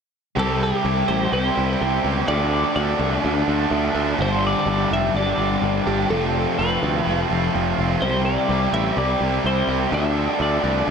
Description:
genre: rock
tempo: 126 BPM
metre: 4/4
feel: straight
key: C major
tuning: A4 = 440 Hz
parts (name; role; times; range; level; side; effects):
- twelve-string electric guitar; melody; 0.4-10.9 s; G4 to E5; -25 LUFS; left 2 dB; phaser, tape echo
- biting overdriven guitar; riff; 0.4-10.9 s; G2 to G4; -23 LUFS; right 9 dB; reverse reverb
- thick fuzz guitar; riff; 0.4-10.9 s; F2 to D4; -25 LUFS; left 11 dB; distortion, wide subtle chorus
- modern bright picked electric bass; bass; 0.4-10.9 s; F1 to D2; -24 LUFS; equal; none
room: moderate huge ambient reverb, RT60 6.7 s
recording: none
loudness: -18 LUFS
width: side -6 dB against mid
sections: 0.4-10.9 A section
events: none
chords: 0.4 C; 2.3 Dm; 4.2 Gsus4; 6.1 F; 8.0 Cadd9; 9.9 Dm7

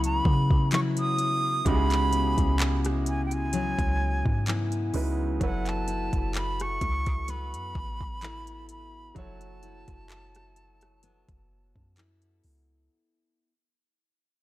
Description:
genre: contemporary R&B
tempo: 64 BPM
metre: 4/4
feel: swing 54% on 16ths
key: unclear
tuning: A4 = 436 Hz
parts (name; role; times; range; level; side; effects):
- silver concert flute; melody; 0.0-12.0 s; F#5 to D#6; -31 LUFS; right 1 dB; none
- clear baby grand piano; accompaniment; 0.0-12.9 s; C#3 to C#5; -34 LUFS; right 4 dB; none
- picked steel-string acoustic guitar; arpeggios; 0.0-13.5 s; C#3 to A4; -33 LUFS; left 4 dB; none
- soft 808-style bass; bass; 0.0-12.9 s; F#1 to C#3; -29 LUFS; equal; none
- smooth R&B drum kit; drums; 0.0-12.7 s; handclaps, hi-hat, kick drum, rim click; -29 LUFS; equal; none
room: small room reverb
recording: dark, warm production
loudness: -24 LUFS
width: side -16 dB against mid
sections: 0.0-12.9 A section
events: fade-out 0.0-12.9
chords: 0.0 C#m11; 5.4 F#m7

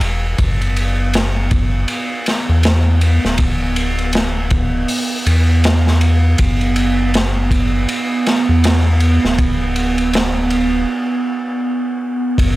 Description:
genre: trip hop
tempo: 80 BPM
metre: 4/4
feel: swing 60% on 16ths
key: unclear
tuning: A4 = 440 Hz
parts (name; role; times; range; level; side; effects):
- round analog bass; bass; 0.0-12.6 s; D1 to E2; -15 LUFS; equal; none
- crunchy breakbeat drum kit; drums; 0.0-12.6 s; hi-hat, kick drum, ride cymbal, snare drum; -18 LUFS; equal; none
- warbly tape-like pad; sustained chords; 0.4-12.6 s; B3 to C#4; -20 LUFS; right 3 dB; chorus, built-in reverb
room: little or no reverb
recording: none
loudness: -13 LUFS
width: side -17 dB against mid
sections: 0.0-12.4 A section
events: break 10.9-12.4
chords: 0.4 F#sus4; 1.9 E5; 3.4 Bm/D; 4.9 E5; 6.4 F#sus4; 7.9 E5; 9.4 Bm/D; 10.9 N.C.

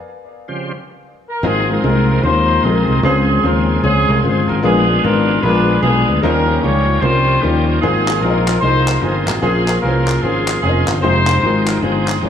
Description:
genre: uptempo gospel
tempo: 150 BPM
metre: 4/4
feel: swing 62% on 8ths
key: Ab major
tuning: A4 = 444 Hz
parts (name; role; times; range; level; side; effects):
- clear upright piano; accompaniment; 0.0-12.3 s; Ab2 to Eb5; -19 LUFS; left 5 dB; dub echo
- bright tonewheel organ; sustained chords; 0.5-12.3 s; Db3 to G5; -24 LUFS; right 4 dB; fast rotary speaker, overdrive, chorus vibrato
- clear horn section; melody; 1.3-12.3 s; Cb4 to Db5; -17 LUFS; equal; dub echo
- fingered electric bass; bass; 1.4-12.3 s; F1 to Eb2; -17 LUFS; equal; none
- group handclap; percussion; 8.1-12.1 s; none; -26 LUFS; left 3 dB; dub echo
room: light reverb, studio ambience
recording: echo-heavy mix, small room ambience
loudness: -12 LUFS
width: side -8 dB against mid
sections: 0.0-1.4 A section; 1.4-12.3 B section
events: tonewheel organ solo 0.0-1.4; stop 0.0-1.4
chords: 0.0 Dbmaj7#11; 1.4 Ab69; 3.0 Dbmaj7; 4.6 Bb7b9; 6.2 Eb13; 7.8 Ab69; 9.4 Bbm9; 11.0 Fm9

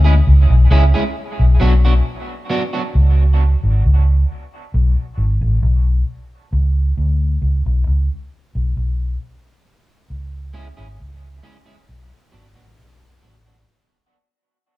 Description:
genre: dub reggae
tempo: 67 BPM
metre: 4/4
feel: straight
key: C# phrygian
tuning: A4 = 439 Hz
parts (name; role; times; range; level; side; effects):
- electric guitar at the edge of break-up; accompaniment; 0.0-2.8, 10.5-13.6 s; F#3 to G#4; -23 LUFS; right 2 dB; wide subtle chorus, dub echo
- vintage muted fingered electric bass; bass; 0.0-13.6 s; G#1 to D2; -13 LUFS; equal; none
room: digital ambience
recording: echo-heavy mix, small room ambience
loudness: -14 LUFS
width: side -17 dB against mid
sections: 0.0-13.7 A section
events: fade-out 0.8-13.7; break 2.9-10.1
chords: 0.0 C#m; 1.1 Bm; 2.9 C#5; 4.7 G#m; 6.5 Bmadd9 (rootless); 8.3 N.C.; 10.1 C#m; 11.9 Bm

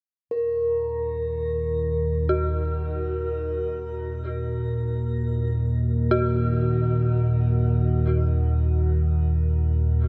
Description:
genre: dark ambient drone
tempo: free time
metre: none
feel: none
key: Eb minor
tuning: A4 = 442 Hz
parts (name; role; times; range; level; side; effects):
- deep dark ambient pad; sustained chords; 1.0-10.1 s; Eb4 to Gb5; -44 LUFS; equal; chorus, built-in reverb, shimmer reverb
- analog drone; drone; 0.6-10.1 s; Eb2 to Bb2; -25 LUFS; equal; lush chorus
- quartz singing bowl; texture; 0.3-10.1 s; Bb4; -32 LUFS; equal; shimmer reverb
- dark detuned synth bell; arpeggios; 2.3-10.1 s; Gb4; -33 LUFS; equal; chorus, tremolo, diffuse ambient delay, shimmer reverb
room: wet huge ambient reverb, RT60 7.8 s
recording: none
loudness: -24 LUFS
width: mono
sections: 0.3-10.1 A section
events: fade-in on ambient pad 0.3-10.1; filter sweep on synth drone 0.3-10.1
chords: 0.3 Ebm

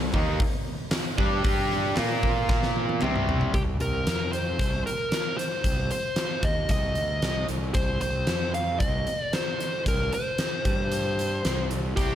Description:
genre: classic rock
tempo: 114 BPM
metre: 4/4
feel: straight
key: C minor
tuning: A4 = 439 Hz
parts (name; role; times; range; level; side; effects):
- cranked stack guitar; riff; 0.0-3.5, 12.0-12.2 s; C3 to Bb4; -30 LUFS; right 10 dB; overdrive
- distorted electric guitar; riff; 0.0-3.5, 12.0-12.2 s; C3 to Bb4; -30 LUFS; left 11 dB; distortion
- fuzz fingered electric bass; bass; 0.0-12.2 s; C2 to Bb2; -30 LUFS; equal; overdrive
- huge arena drum kit; drums; 0.1-12.1 s; hi-hat, kick drum, snare drum, toms; -27 LUFS; equal; none
- group handclap; percussion; 0.1-3.1 s; none; -42 LUFS; left 3 dB; none
- dark smooth lead guitar; melody; 3.5-12.2 s; G4 to F5; -29 LUFS; equal; overdrive, slapback echo
room: light reverb, small room ambience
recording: none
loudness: -24 LUFS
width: side -11 dB against mid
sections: 0.0-3.5 A section; 3.5-12.2 B section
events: drum fill 2.5-3.5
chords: 0.0 Cm; 1.5 G5; 2.0 Bb5; 3.0 C5; 4.1 F5; 4.6 Cm; 8.3 F5; 8.8 Cm; 10.7 Gsus4; 11.4 C5

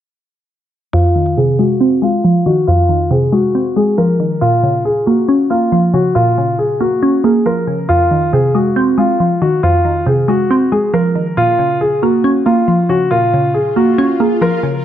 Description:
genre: hip hop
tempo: 138 BPM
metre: 4/4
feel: half-time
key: F phrygian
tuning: A4 = 439 Hz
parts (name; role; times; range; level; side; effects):
- dark grand piano; melody; 0.9-14.8 s; F4 to Bb4; -15 LUFS; left 1 dB; low-pass filter
- glassy wavetable pluck; accompaniment; 0.9-14.8 s; F2 to Db4; -13 LUFS; right 1 dB; chorus, low-pass filter
- swell; sound effects; 13.5-14.8 s; none; -23 LUFS; equal; none
room: light reverb, studio reverb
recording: dark, warm production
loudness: -11 LUFS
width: side -10 dB against mid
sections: 0.9-14.8 A section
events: filter sweep 0.9-14.8; swell 13.5-14.8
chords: 0.9 Fm7; 4.4 Bbm; 7.9 Fm7; 11.4 Bbm

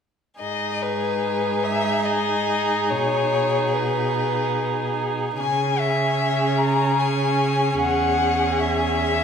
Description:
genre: classical, slow romantic movement for string quartet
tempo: 73 BPM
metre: 3/4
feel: rubato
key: G# minor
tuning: A4 = 439 Hz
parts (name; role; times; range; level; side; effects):
- warm violin; melody; 0.4-9.2 s; B4 to A#5; -24 LUFS; left 5 dB; none
- rich violin; second line; 0.4-9.2 s; G#4; -26 LUFS; left 3 dB; none
- rich viola; accompaniment; 0.4-9.2 s; C#4 to D#4; -26 LUFS; right 5 dB; none
- rich cello; bass; 0.4-9.2 s; E2 to C#3; -26 LUFS; right 4 dB; none
room: wet recital hall reverb, RT60 1.7 s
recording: minimal, uncompressed stereo recording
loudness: -19 LUFS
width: side -7 dB against mid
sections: 0.4-9.2 A section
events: none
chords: 0.4 G#m; 2.9 G#m/B; 5.4 C#m; 7.8 C#m/E

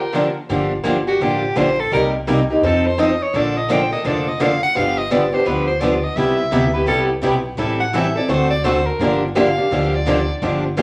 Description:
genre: acoustic string swing (jazz manouche)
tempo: 169 BPM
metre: 4/4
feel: swing 62% on 8ths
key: G minor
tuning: A4 = 440 Hz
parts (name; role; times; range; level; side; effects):
- edgy soprano saxophone; second line; 0.0-10.4 s; F#4 to G5; -24 LUFS; equal; none
- picked acoustic archtop guitar; accompaniment; 0.1-10.8 s; C3 to A4; -22 LUFS; equal; none
- picked steel-string acoustic guitar; accompaniment; 0.1-10.8 s; C3 to A4; -24 LUFS; equal; none
- upright bass; bass; 0.5-10.8 s; F1 to F2; -28 LUFS; equal; none
room: wet large studio reverb, RT60 0.9 s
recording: vinyl crackle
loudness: -18 LUFS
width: mono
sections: 0.5-10.8 A section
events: break 0.0-0.5; soprano saxophone solo 0.5-10.8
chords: 0.0 Gm7; 0.5 Gm9; 1.9 Cm7; 2.6 F7; 3.3 Bbmaj7; 4.8 G7; 6.2 Cmaj7; 7.6 Am7; 8.3 D7; 9.0 Gm7

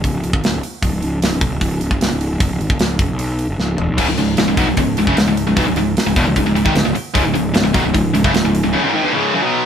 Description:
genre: heavy metal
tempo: 152 BPM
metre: 4/4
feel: straight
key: unclear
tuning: A4 = 443 Hz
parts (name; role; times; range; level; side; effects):
- fuzz picked electric bass; bass; 0.0-8.7 s; C#1 to B1; -19 LUFS; equal; overdrive
- tight metal drum kit; drums; 0.0-8.6 s; crash cymbal, hi-hat, kick drum, snare drum, toms; -19 LUFS; equal; none
- tight distorted guitar; riff; 4.0-9.7 s; C#2 to B3; -15 LUFS; equal; distortion
room: moderate studio reverb, RT60 0.6 s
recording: band playing live in one room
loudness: -14 LUFS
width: side -8 dB against mid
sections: 0.0-9.7 A section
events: drum fill 3.6-4.0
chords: 0.0 N.C.; 3.5 C#5

